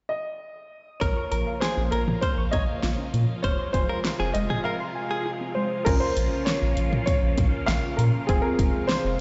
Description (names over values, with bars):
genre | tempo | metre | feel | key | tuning
synth-pop | 99 BPM | 4/4 | straight | unclear | A4 = 440 Hz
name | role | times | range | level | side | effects
warm baby grand piano | melody | 0.1-9.2 s | Ab4 to F5 | -32 LUFS | equal | shimmer reverb
direct-recorded clean electric guitar | second line | 1.0-5.3 s | Ab4 to Db5 | -34 LUFS | equal | analog delay, shimmer reverb
phased string machine | sustained chords | 1.0-9.2 s | C3 to F4 | -36 LUFS | equal | ensemble chorus, phaser, shimmer reverb
warbly dusty pluck | arpeggios | 1.0-5.7 s | F3 to F6 | -37 LUFS | equal | chorus, analog delay, shimmer reverb
round analog bass | bass | 1.0-9.2 s | F1 to Bb2 | -28 LUFS | equal | none
pop drum kit | drums | 1.0-9.0 s | crash cymbal, hi-hat, kick drum, snare drum, toms | -29 LUFS | equal | none
funky polysynth comp | accompaniment | 5.9-9.2 s | C4 to Bb4 | -33 LUFS | equal | chorus, shimmer reverb
room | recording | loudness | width
moderate lush hall reverb, RT60 2.3 s | played on a big sound system in a bare room, stone room reverb, nothing above 7.8 kHz | -25 LUFS | mono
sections
0.0-1.0 A section; 1.0-5.9 B section; 5.9-9.2 C section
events
break 4.7-5.9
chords
0.0 N.C.; 1.0 Bbm; 3.4 Fm; 5.9 Bbm; 8.3 Fm